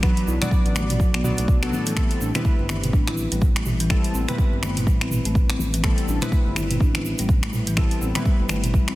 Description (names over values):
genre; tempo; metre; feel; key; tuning
afro house; 124 BPM; 4/4; swing 59% on 16ths; A dorian; A4 = 439 Hz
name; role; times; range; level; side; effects
buzzing marimba with soft mallets; arpeggios; 0.0-8.9 s; E3 to E4; -28 LUFS; equal; sidechain pumping, tape echo
warm analog keys; stabs; 0.0-8.9 s; F#3 to D5; -29 LUFS; left 2 dB; chorus, sidechain pumping, tape echo
smooth synth bass; bass; 0.0-8.9 s; G1 to A2; -27 LUFS; equal; sidechain pumping
afro-pop drum kit; drums; 0.0-8.9 s; finger snaps, hi-hat, toms; -27 LUFS; right 1 dB; studio reverb, soft clipping on snare
electronic kick drum; drums; 0.0-8.9 s; none; -20 LUFS; equal; studio reverb
congas; percussion; 0.0-8.9 s; none; -34 LUFS; left 2 dB; none
egg shaker; percussion; 0.0-8.9 s; none; -39 LUFS; right 4 dB; none
room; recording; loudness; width
studio reverb; dense, heavily limited modern master; -19 LUFS; side -17 dB against mid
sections
0.0-8.9 A section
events
none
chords
0.0 Bm; 2.0 Am7